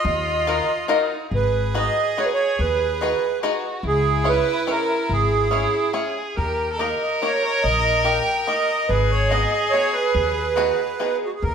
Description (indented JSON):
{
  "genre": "musette waltz",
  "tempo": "142 BPM",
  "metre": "3/4",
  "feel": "swing 53% on 8ths, rubato",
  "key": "G# minor",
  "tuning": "A4 = 440 Hz",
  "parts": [
    { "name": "accordion", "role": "melody", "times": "0.0-11.5 s", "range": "F#4 to G5", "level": "-21 LUFS", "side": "right 4 dB", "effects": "light tremolo tuning" },
    { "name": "rich violin", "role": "second line", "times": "0.0-11.2 s", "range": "Eb4 to A#4", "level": "-25 LUFS", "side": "equal", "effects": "none" },
    { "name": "upright bass", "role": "bass", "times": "0.0-11.5 s", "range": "G#1 to Eb2", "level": "-24 LUFS", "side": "left 2 dB", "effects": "none" },
    { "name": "bluegrass banjo", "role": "accompaniment", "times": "0.5-11.2 s", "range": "A#3 to Eb5", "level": "-26 LUFS", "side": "left 4 dB", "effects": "none" }
  ],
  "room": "wet stone room reverb, RT60 1.3 s",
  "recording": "band playing live in one room",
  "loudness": "-18 LUFS",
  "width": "side -7 dB against mid",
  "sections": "0.0-1.3 A section; 1.3-11.4 B section",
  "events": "none",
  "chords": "0.0 Ebmadd9; 1.3 G#m7; 3.8 C#m; 6.4 D#; 8.9 G#m7"
}